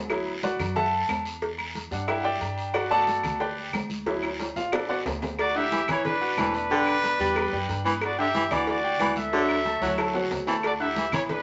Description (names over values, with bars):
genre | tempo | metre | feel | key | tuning
latin, salsa | 182 BPM | 4/4 | straight | D major | A4 = 440 Hz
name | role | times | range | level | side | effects
bright concert grand piano | accompaniment | 0.0-11.4 s | F#3 to G6 | -31 LUFS | equal | none
upright bass | bass | 0.0-11.4 s | E1 to G2 | -40 LUFS | equal | none
agogo bells and timbales | percussion | 0.1-11.4 s | none | -39 LUFS | equal | none
claves | percussion | 0.1-11.3 s | none | -38 LUFS | equal | none
congas | percussion | 0.1-11.4 s | none | -39 LUFS | equal | none
cowbell and bongos | percussion | 0.1-11.4 s | none | -36 LUFS | equal | none
guiro | percussion | 0.1-11.4 s | none | -42 LUFS | equal | none
clear trumpet section | melody | 5.4-11.4 s | D4 to E5 | -29 LUFS | equal | none
breathy baritone saxophone | second line | 5.6-11.4 s | D3 to G3 | -30 LUFS | equal | none
room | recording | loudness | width
wet studio reverb, RT60 0.6 s | nothing above 7.8 kHz | -26 LUFS | mono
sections
0.0-5.4 A section; 5.4-11.4 B section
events
grand piano solo 0.0-5.4; drum fill 4.1-5.4, 9.8-10.6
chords
0.0 D69; 1.4 Em7; 2.7 Gmaj9; 4.1 D69; 6.7 Em7; 8.0 Gmaj7; 9.3 D69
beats
| 0.10 0.43 0.76 1.09 | 1.42 1.75 2.08 2.41 | 2.75 3.08 3.41 3.74 | 4.07 4.40 4.73 5.06 | 5.39 5.72 6.05 6.38 | 6.71 7.03 7.36 7.69 | 8.02 8.35 8.67 9.00 | 9.33 9.66 9.98 10.31 | 10.64 10.96 11.29